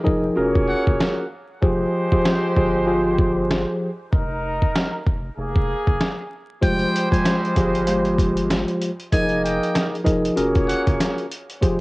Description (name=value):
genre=hip hop, boom-bap hip-hop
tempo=96 BPM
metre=4/4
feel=swing 59% on 16ths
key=F minor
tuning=A4 = 442 Hz
part: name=mellow tine electric piano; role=accompaniment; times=0.0-11.8 s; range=F3 to Eb5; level=-20 LUFS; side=equal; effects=medium stereo tremolo, cassette tape, high-pass filter, low-pass filter
part: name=mellow trumpet section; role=stabs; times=0.0-11.8 s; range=G3 to Eb5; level=-27 LUFS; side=right 1 dB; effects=high-pass filter, low-pass filter, analog delay
part: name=round analog bass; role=bass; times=0.1-11.8 s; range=F1 to G1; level=-30 LUFS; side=equal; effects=none
part: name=dusty soul sampler-style drum kit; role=drums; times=0.1-11.8 s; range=hi-hat, kick drum, snare drum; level=-21 LUFS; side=equal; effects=overdrive, cassette tape
part: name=trumpet with metal mute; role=melody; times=0.7-0.8, 6.6-10.8 s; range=Gb5 to Ab5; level=-29 LUFS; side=equal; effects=high-pass filter, low-pass filter, cassette tape
room=light reverb, digital ambience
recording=home recording on cassette, vinyl crackle, nothing above 10.5 kHz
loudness=-18 LUFS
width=side -22 dB against mid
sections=0.0-11.8 A section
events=break 0.0-6.6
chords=0.4 Gbadd9/F; 1.6 Fmadd9; 4.1 F7sus4; 5.4 Gbadd9/F; 6.6 Fmadd9; 9.1 Absus2/F; 10.4 Gbadd9/F